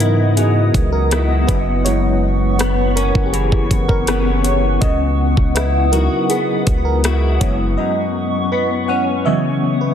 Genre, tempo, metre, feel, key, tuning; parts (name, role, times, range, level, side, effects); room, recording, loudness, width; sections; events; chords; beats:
contemporary R&B; 81 BPM; 4/4; straight; C# dorian; A4 = 441 Hz
FM electric piano with tremolo; accompaniment; 0.0-9.9 s; E3 to F#5; -21 LUFS; right 3 dB; phaser
granular cloud pad; sustained chords; 0.0-9.9 s; B3 to D#6; -22 LUFS; equal; built-in reverb, sidechain pumping
direct-recorded clean electric guitar; arpeggios; 0.0-9.9 s; F#2 to F#4; -21 LUFS; left 7 dB; ensemble chorus, ping-pong delay
long sustained 808-style bass; bass; 0.0-7.8 s; F#1 to G#2; -18 LUFS; equal
smooth R&B drum kit; drums; 0.0-7.6 s; hi-hat, kick drum, rim click; -19 LUFS; equal
digital ambience; dense, heavily limited modern master; -14 LUFS; side -9 dB against mid
0.0-9.9 A section
FM electric piano solo 0.0-9.9; silent gap 7.8-9.9
0.0 C#m11; 1.5 F#7sus4; 4.8 C#m11; 7.4 F#7sus4; 9.3 C#m11
0.38 1.12 | 1.86 2.60 3.34 4.08 | 4.82 5.56 6.30 7.04 | 7.78 8.52 9.26